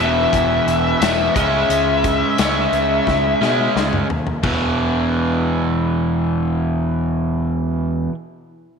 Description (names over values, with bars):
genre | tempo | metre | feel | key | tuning
classic rock | 88 BPM | 4/4 | straight | E major | A4 = 440 Hz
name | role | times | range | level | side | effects
bluesy overdriven lead guitar | melody | 0.0-3.7 s | E5 | -19 LUFS | left 4 dB | distortion
crunchy overdriven guitar | riff | 0.0-8.1 s | E2 to C#4 | -19 LUFS | right 2 dB | none
growling picked electric bass | bass | 0.0-8.1 s | E1 to B2 | -24 LUFS | right 1 dB | overdrive
big rock drum kit | drums | 0.3-4.6 s | china cymbal, hi-hat, kick drum, snare drum, tambourine, toms | -23 LUFS | left 4 dB | none
room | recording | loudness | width
moderate echo chamber reverb, RT60 2.0 s | 1960s-style stereo | -16 LUFS | side -6 dB against mid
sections
0.0-4.4 A section; 4.4-7.2 B section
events
drum fill 3.1-4.4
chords
0.0 E5; 1.3 C#m; 4.4 E5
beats
0.33 1.01 | 1.69 2.37 3.06 3.74 | 4.43 5.11 5.80 6.48